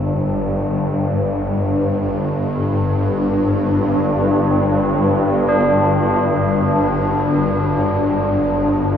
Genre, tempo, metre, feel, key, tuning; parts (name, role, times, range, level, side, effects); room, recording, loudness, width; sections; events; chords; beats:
dark ambient drone; free time; A4 = 440 Hz
tubular bells; arpeggios; 0.0-9.0 s; D4 to A4; -22 LUFS; equal; diffuse ambient delay
swarming drone; drone; 0.0-9.0 s; G1 to G2; -16 LUFS; left 1 dB; built-in reverb
wet huge ambient reverb, RT60 8.1 s; in a vast, echoing space, cassette tape; -15 LUFS; side -8 dB against mid
0.0-9.0 A section
fade-in on tubular bells 0.0-9.0
0.0 Gsus2
free time